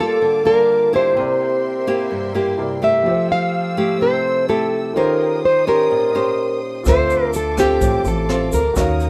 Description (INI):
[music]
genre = bossa nova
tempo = 126 BPM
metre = 4/4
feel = straight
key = unclear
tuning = A4 = 440 Hz
[part]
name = nylon-string guitar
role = melody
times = 0.0-9.1 s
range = G4 to F5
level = -20 LUFS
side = equal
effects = none
[part]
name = reedy silver concert flute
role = second line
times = 0.0-9.1 s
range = G4 to F5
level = -29 LUFS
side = equal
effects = none
[part]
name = nylon-string guitar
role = accompaniment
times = 0.0-9.1 s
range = G2 to C5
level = -24 LUFS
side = equal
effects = none
[part]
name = warm concert grand piano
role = accompaniment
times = 0.0-9.1 s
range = C3 to A5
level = -30 LUFS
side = equal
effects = none
[part]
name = warm symphonic violin section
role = sustained chords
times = 0.0-9.1 s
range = Eb4 to E6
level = -35 LUFS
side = equal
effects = none
[part]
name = upright bass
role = bass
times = 6.9-9.1 s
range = A1 to Eb2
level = -24 LUFS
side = equal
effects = none
[part]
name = jazz brush drum kit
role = drums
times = 6.9-9.1 s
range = hi-hat, kick drum, rim click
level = -26 LUFS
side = equal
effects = none
[part]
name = egg shaker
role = percussion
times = 6.9-9.1 s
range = none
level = -39 LUFS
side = equal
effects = none
[sound]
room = light reverb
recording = none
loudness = -18 LUFS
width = mono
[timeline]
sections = 0.0-9.1 A section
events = none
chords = 0.0 Gm9; 1.2 C7; 3.1 Fmaj9; 5.0 Eb13; 6.9 Dm7